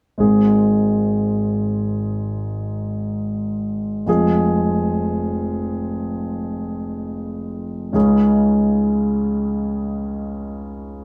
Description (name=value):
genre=pop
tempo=free time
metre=none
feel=none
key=Ab major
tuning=A4 = 441 Hz
part: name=dark baby grand piano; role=accompaniment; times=0.2-11.0 s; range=F1 to Ab4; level=-20 LUFS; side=equal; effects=none
room=moderate stone room reverb, RT60 1.1 s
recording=band playing live in one room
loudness=-20 LUFS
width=mono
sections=0.2-11.0 A section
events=none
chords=0.2 Ab; 4.1 Fm; 7.9 Dbsus2